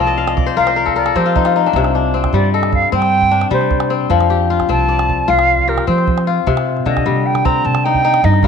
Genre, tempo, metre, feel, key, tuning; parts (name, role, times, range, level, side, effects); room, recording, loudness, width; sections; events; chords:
west african traditional, West African string and xylophone music; 102 BPM (dotted quarters); 12/8; straight; C dorian; A4 = 437 Hz
mellow silver concert flute; melody; 0.0-8.4 s; Bb4 to Bb5; -17 LUFS; right 4 dB
kora; arpeggios; 0.0-8.5 s; C3 to G5; -16 LUFS; left 9 dB; slapback echo
upright bass; bass; 0.0-8.5 s; C2 to F3; -18 LUFS; right 2 dB
calabash; percussion; 0.3-8.5 s; -21 LUFS; right 5 dB
moderate echo chamber reverb, RT60 1.6 s; 1960s-style stereo; -12 LUFS; side -6 dB against mid
0.0-6.5 A section; 6.5-8.5 B section
kora fill 0.0-1.7; flute solo 6.5-8.5
0.0 F; 6.5 Cm